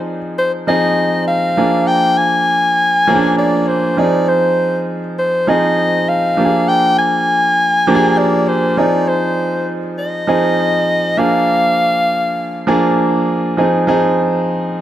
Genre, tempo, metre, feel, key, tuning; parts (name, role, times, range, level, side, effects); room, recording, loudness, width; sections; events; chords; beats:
R&B; 100 BPM; 4/4; swing 63% on 16ths; F dorian; A4 = 435 Hz
breathy soprano saxophone; melody; 0.0-13.0 s; C5 to Ab5; -15 LUFS; left 1 dB
clear grand piano; accompaniment; 0.0-14.8 s; F3 to Ab4; -15 LUFS; right 1 dB
light reverb, small room ambience; -12 LUFS; side -12 dB against mid
0.0-13.6 A section; 13.6-14.8 B section
0.0 Fm7; 1.6 Bb7; 4.0 Fm7; 6.4 Bb7; 8.8 Fm7; 11.2 Bb7; 13.6 Fm7
0.38 0.97 | 1.57 2.17 2.77 3.38 | 3.98 4.58 5.17 5.78 | 6.38 6.97 7.58 8.18 | 8.78 9.38 9.97 10.57 | 11.18 11.78 12.38 12.97 | 13.57 14.18 14.78